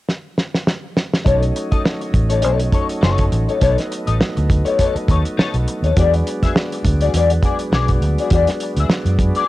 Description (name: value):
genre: funk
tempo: 102 BPM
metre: 4/4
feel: swing 56% on 16ths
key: B mixolydian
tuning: A4 = 440 Hz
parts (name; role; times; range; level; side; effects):
- cloth-damped thuddy drum kit; drums; 0.1-9.5 s; hi-hat, kick drum, snare drum; -18 LUFS; equal; cassette tape
- clean electric guitar; accompaniment; 1.2-9.5 s; D#4 to E5; -20 LUFS; left 6 dB; wah, analog chorus, cassette tape
- tonewheel organ; sustained chords; 1.3-9.5 s; F#3 to D#4; -25 LUFS; right 1 dB; slow rotary speaker, cassette tape
- vintage muted fingered electric bass; bass; 1.3-9.3 s; F#1 to F#2; -17 LUFS; equal; transformer saturation
room: studio reverb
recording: home recording on cassette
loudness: -15 LUFS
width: side -16 dB against mid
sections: 0.0-1.3 A section; 1.3-9.5 B section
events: drum fill 0.1-1.3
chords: 0.0 N.C.; 1.3 B9; 6.0 E9